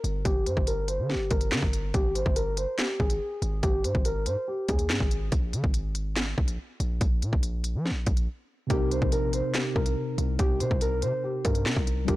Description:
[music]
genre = hip hop, drill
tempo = 142 BPM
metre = 4/4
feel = half-time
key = C minor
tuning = A4 = 436 Hz
[part]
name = dark concert grand piano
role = melody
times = 0.0-5.3, 8.7-12.2 s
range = G4 to C5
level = -30 LUFS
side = equal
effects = low-pass filter
[part]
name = hard-hitting 808-style bass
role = bass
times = 0.0-12.2 s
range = G1 to F3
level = -29 LUFS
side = equal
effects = none
[part]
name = drill drum kit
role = drums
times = 0.0-12.2 s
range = handclaps, hi-hat, kick drum, snare drum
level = -27 LUFS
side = equal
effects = none
[part]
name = mellow tine electric piano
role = accompaniment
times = 8.7-12.2 s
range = C3 to Bb4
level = -31 LUFS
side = equal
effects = medium stereo tremolo, low-pass filter
[sound]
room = little or no reverb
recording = blown-out, overdriven recording, overdrive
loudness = -25 LUFS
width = side -17 dB against mid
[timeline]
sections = 0.0-12.2 A section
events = filter sweep 0.0-8.7; break 8.3-8.7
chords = 0.0 Gm; 1.9 Ab5; 5.3 Bb7(no3); 8.7 Cm7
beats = | 0.25 0.67 1.10 1.52 | 1.94 2.36 2.79 3.21 | 3.63 4.05 4.48 4.90 | 5.32 5.74 6.17 6.59 | 7.01 7.43 7.86 8.28 | 8.70 9.12 9.55 9.97 | 10.39 10.81 11.24 11.66 | 12.08

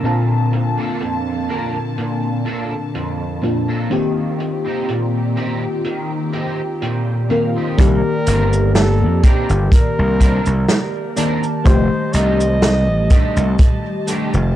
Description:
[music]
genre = vaporwave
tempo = 62 BPM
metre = 4/4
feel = swing 54% on 16ths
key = C dorian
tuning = A4 = 439 Hz
[part]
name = FM electric piano with soft pad layer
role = accompaniment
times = 0.0-14.6 s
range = Bb2 to A5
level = -20 LUFS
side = left 2 dB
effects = analog chorus, cassette tape, dub echo
[part]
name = dark chamber string section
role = sustained chords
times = 0.0-14.6 s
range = D3 to A5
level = -31 LUFS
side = equal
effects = none
[part]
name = electric guitar at the edge of break-up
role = riff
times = 0.0-14.3 s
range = F2 to G5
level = -24 LUFS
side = right 1 dB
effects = ensemble chorus, low-pass filter, dub echo
[part]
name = vintage drum kit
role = drums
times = 0.0-14.5 s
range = cabasa, hi-hat, snare drum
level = -23 LUFS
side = right 1 dB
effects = low-pass filter on hats, low-pass filter on snare, low-pass filter on perc, low-pass filter on room, dub echo
[part]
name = breathy flugelhorn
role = melody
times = 7.8-14.1 s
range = G4 to Eb5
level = -23 LUFS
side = equal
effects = tape echo
[part]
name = gritty slap bass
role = bass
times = 7.8-14.6 s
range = F1 to F2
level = -16 LUFS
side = equal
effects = overdrive, tube saturation
[part]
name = kick drum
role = drums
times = 7.8-13.8 s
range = none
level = -12 LUFS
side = equal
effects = none
[sound]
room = light reverb, small room ambience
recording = echo-heavy mix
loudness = -15 LUFS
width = side -12 dB against mid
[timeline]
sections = 0.0-7.8 A section; 7.8-14.6 B section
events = clean electric guitar fill 6.3-7.8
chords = 0.0 Bbmaj7; 3.9 Eb6; 7.8 Cm9; 11.7 F13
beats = | 0.04 1.01 1.98 2.95 | 3.92 4.88 5.85 6.82 | 7.79 8.75 9.72 10.69 | 11.66 12.62 13.59

